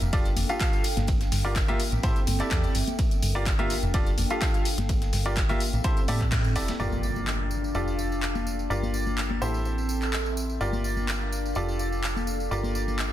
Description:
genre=piano house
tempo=126 BPM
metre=4/4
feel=swing 53% on 16ths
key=G dorian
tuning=A4 = 440 Hz
part: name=solid FM bass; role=bass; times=0.0-13.1 s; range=E1 to A2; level=-29 LUFS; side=equal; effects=sidechain pumping
part: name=house drum kit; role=drums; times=0.0-13.1 s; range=handclaps, hi-hat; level=-34 LUFS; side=left 1 dB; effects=none
part: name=tambourine and congas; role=percussion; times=0.0-13.1 s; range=none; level=-36 LUFS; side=left 5 dB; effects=none
part: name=warbly tape-like pad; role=texture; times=0.0-13.1 s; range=C4 to G5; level=-34 LUFS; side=right 1 dB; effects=chorus, built-in reverb, sidechain pumping
part: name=bright baby grand piano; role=riff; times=0.1-13.1 s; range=E4 to F5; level=-32 LUFS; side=equal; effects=sidechain pumping, low-pass filter, ping-pong delay
part: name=dusty soul sampler-style drum kit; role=drums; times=0.1-6.8 s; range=ride cymbal, snare drum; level=-42 LUFS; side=right 2 dB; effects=high-pass filter on cymbals, high-pass filter on snare
part: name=electronic kick drum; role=drums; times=0.1-6.4 s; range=none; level=-26 LUFS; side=equal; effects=none
part: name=impact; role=sound effects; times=6.8-8.7 s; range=none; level=-36 LUFS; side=equal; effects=none
room=light reverb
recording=dense, heavily limited modern master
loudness=-24 LUFS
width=side -12 dB against mid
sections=0.0-6.8 A section; 6.8-13.1 B section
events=band accent 6.3; impact 6.8-8.7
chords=0.1 F69; 1.1 Gm7; 1.8 Am7; 3.0 Gm7; 3.9 F69; 4.9 Gm7; 5.6 Am7; 6.8 Gm7; 7.8 F69; 8.7 Gm7; 9.4 Am7; 10.6 Gm7; 11.6 F69; 12.5 Gm7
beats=0.13 0.61 | 1.08 1.56 2.04 2.51 | 2.99 3.46 3.94 4.42 | 4.89 5.37 5.84 6.32 | 6.80 7.27 7.75 8.23 | 8.70 9.18 9.65 10.13 | 10.61 11.08 11.56 12.04 | 12.51 12.99

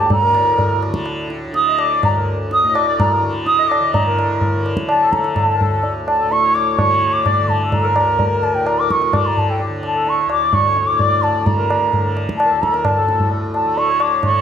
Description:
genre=indian classical, Hindustani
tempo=128 BPM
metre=4/4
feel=straight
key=unclear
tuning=A4 = 440 Hz
part: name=mellow bansuri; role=melody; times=0.0-14.4 s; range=G5 to Eb6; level=-16 LUFS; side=equal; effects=none
part: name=hand-pumped harmonium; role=second line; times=0.0-14.4 s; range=G4 to Eb5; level=-25 LUFS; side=left 5 dB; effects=none
part: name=tanpura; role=drone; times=0.0-14.4 s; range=D2 to D3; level=-25 LUFS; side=equal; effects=none
part: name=tabla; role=percussion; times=0.1-14.4 s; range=none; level=-20 LUFS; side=right 1 dB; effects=none
room=moderate recital hall reverb, RT60 1.6 s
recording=none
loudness=-14 LUFS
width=side -8 dB against mid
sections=0.0-3.9 A section; 3.9-14.4 B section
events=speeding up 0.0-14.4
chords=none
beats=| 0.12 0.60 1.08 1.56 | 2.04 2.52 2.99 3.47 | 3.94 4.42 4.90 5.37 | 5.84 6.32 6.79 7.26 | 7.73 8.20 8.67 9.14 | 9.60 10.07 10.54 11.00 | 11.46 11.93 12.39 12.85 | 13.31 13.78 14.24

